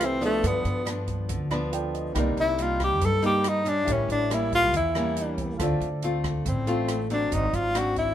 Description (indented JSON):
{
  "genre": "bossa nova",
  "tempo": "140 BPM",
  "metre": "4/4",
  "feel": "straight",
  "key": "G minor",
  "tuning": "A4 = 440 Hz",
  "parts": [
    { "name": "breathy tenor saxophone", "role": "melody", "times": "0.0-8.1 s", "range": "A3 to A4", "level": "-25 LUFS", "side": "left 1 dB", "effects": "none" },
    { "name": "dark concert grand piano", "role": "accompaniment", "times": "0.0-8.1 s", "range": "Eb4 to B5", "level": "-35 LUFS", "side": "right 2 dB", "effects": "none" },
    { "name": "nylon-string guitar", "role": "accompaniment", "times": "0.0-8.1 s", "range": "G2 to F4", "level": "-30 LUFS", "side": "left 1 dB", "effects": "none" },
    { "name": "upright bass", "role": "bass", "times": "0.0-8.1 s", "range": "Ab1 to G2", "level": "-29 LUFS", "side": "equal", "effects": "none" },
    { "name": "open jazz drum kit", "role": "drums", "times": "0.0-8.1 s", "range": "hi-hat, kick drum, rim click", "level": "-35 LUFS", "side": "right 1 dB", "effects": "none" }
  ],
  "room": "light reverb",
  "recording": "minimal, uncompressed stereo recording",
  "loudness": "-23 LUFS",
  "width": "side -11 dB against mid",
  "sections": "0.0-8.1 A section",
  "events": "tenor saxophone solo 0.0-8.1; grand piano fill 1.3-2.2",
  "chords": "0.4 G7; 2.2 Cm7; 3.9 A7b9; 5.6 Dm7; 7.3 Ab7#11"
}